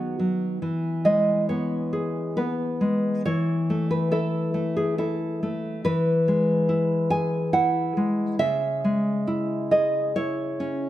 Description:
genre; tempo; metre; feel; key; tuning
romantic piece for solo classical guitar; 69 BPM; 3/4; rubato; E major; A4 = 439 Hz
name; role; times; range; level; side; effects
nylon-string guitar; solo; 0.0-10.9 s; C#3 to G#5; -22 LUFS; equal; none
room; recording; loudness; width
light reverb; none; -22 LUFS; side -13 dB against mid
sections
0.0-10.9 A section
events
none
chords
0.0 B/D#; 0.6 E; 3.2 A5/E; 5.8 E; 8.4 C#m

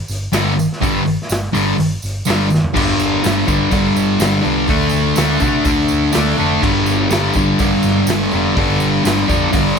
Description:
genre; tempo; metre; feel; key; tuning
garage rock duo or trio; 124 BPM; 4/4; straight; unclear; A4 = 441 Hz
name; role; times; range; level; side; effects
hollow-body short-scale picked electric bass; bass; 0.1-9.7 s; F1 to C3; -23 LUFS; equal; tube saturation
raw garage drum kit; drums; 0.1-9.7 s; crash cymbal, hi-hat, kick drum, snare drum, toms; -21 LUFS; equal; none
tambourine; percussion; 0.1-9.6 s; none; -31 LUFS; right 7 dB; none
thick fuzz guitar; riff; 0.3-9.8 s; G2 to D4; -14 LUFS; left 1 dB; distortion
room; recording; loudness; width
light reverb; none; -13 LUFS; side -6 dB against mid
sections
0.0-2.8 A section; 2.8-9.8 B section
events
drum fill 2.5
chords
0.0 G5; 4.7 D5; 6.6 G5

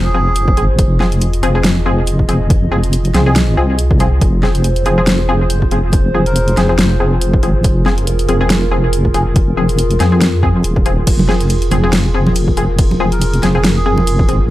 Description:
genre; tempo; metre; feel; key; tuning
deep dubstep; 140 BPM; 4/4; swing 56% on 16ths, half-time; F minor; A4 = 440 Hz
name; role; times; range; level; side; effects
melodica; melody; 0.0-0.6, 6.3-6.6, 13.1-14.4 s; Ab4 to Bb4; -23 LUFS; right 1 dB; dub echo
dark analog pad; sustained chords; 0.0-14.5 s; F4 to Eb5; -22 LUFS; right 1 dB; wide subtle chorus
deep soft wobble bass; bass; 0.0-14.5 s; Eb1 to F2; -14 LUFS; equal; chorus
filtered dub chord stab; stabs; 0.1-14.4 s; F3 to Ab4; -19 LUFS; left 2 dB; chorus, dub echo
deep house drum kit; drums; 0.4-14.4 s; crash cymbal, hi-hat, snare drum; -18 LUFS; equal; overdrive
electronic kick drum; drums; 0.5-14.3 s; none; -15 LUFS; equal; overdrive
congas; percussion; 11.2-14.1 s; none; -20 LUFS; right 2 dB; none
room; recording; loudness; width
digital ambience; dark, warm production; -11 LUFS; side -15 dB against mid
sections
0.0-14.5 A section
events
none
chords
0.0 Fm

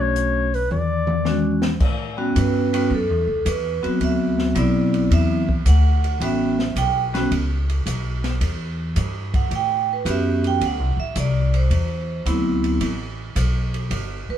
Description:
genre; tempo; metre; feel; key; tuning
jazz, small-group swing and bop; 109 BPM; 4/4; swing 69% on 8ths; A mixolydian; A4 = 439 Hz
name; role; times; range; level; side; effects
mellow clarinet; melody; 0.0-1.6 s; B4 to D5; -23 LUFS; left 5 dB; none
vibraphone with medium hard mallets; accompaniment; 0.0-14.4 s; F#3 to G5; -21 LUFS; right 2 dB; none
upright bass; bass; 0.0-14.3 s; G1 to A2; -22 LUFS; equal; none
open jazz drum kit; drums; 0.2-14.1 s; crash cymbal, hi-hat, kick drum, ride cymbal, snare drum, toms; -28 LUFS; equal; none
room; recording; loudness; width
moderate studio reverb, RT60 0.6 s; band playing live in one room; -18 LUFS; side -10 dB against mid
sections
0.0-1.8 A section; 1.8-14.4 B section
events
drum fill 0.7-1.8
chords
0.0 Bm7; 0.7 E13; 1.8 A13; 4.0 D13; 6.2 A13; 8.4 Em; 9.5 A13; 10.6 D13; 12.8 A7sus2

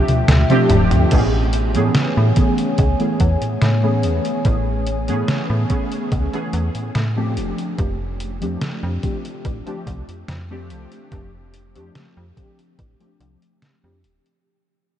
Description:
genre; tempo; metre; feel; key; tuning
vaporwave; 72 BPM; 4/4; straight; unclear; A4 = 440 Hz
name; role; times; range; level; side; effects
warbly tape-like pad; sustained chords; 0.0-14.4 s; A3 to G#5; -27 LUFS; left 2 dB; chorus, built-in reverb
slap-like FM bass; bass; 0.0-14.2 s; D1 to A2; -20 LUFS; equal; none
detuned 8-bit digital drum machine; drums; 0.1-14.4 s; crash cymbal, hi-hat, snare drum, toms; -21 LUFS; equal; vintage 12-bit sampler grit
warbly lo-fi synth keys; accompaniment; 0.5-14.0 s; E3 to G#4; -22 LUFS; right 1 dB; ensemble chorus, vintage 12-bit sampler grit, diffuse ambient delay
electronic kick drum; drums; 1.1-13.0 s; none; -20 LUFS; equal; vintage 12-bit sampler grit
room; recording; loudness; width
moderate huge ambient reverb, RT60 8.2 s; dreamy mix soaked in reverb, cassette tape; -16 LUFS; side -10 dB against mid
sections
0.0-1.1 A section; 1.1-14.4 B section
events
drum fill 0.0-1.1; fade-out 1.1-14.4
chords
0.0 F69; 1.1 Amaj9; 7.4 F69

